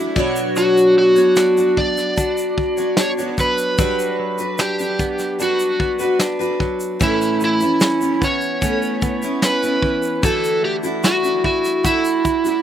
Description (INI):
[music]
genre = acoustic pop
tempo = 74 BPM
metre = 4/4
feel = straight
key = D major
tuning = A4 = 440 Hz
[part]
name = picked steel-string acoustic guitar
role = accompaniment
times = 0.0-12.6 s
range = A2 to C#5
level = -19 LUFS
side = equal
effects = double-tracked left and right, slapback echo
[part]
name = direct-recorded clean electric guitar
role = arpeggios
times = 0.0-12.6 s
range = E3 to F#4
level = -28 LUFS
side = right 4 dB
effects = slapback echo
[part]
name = soft brush drum kit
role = drums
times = 0.2-12.6 s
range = kick drum, shaker, snare drum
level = -22 LUFS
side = equal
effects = none
[part]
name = overdriven slide guitar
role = melody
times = 0.6-12.6 s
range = E4 to D5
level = -19 LUFS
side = equal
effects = none
[sound]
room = light reverb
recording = recorded outdoors, with no room sound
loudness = -15 LUFS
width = side -10 dB against mid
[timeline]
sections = 0.0-12.6 A section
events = none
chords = 0.2 Bmadd9; 3.8 Gmaj7; 7.0 Aadd9; 10.2 Dadd9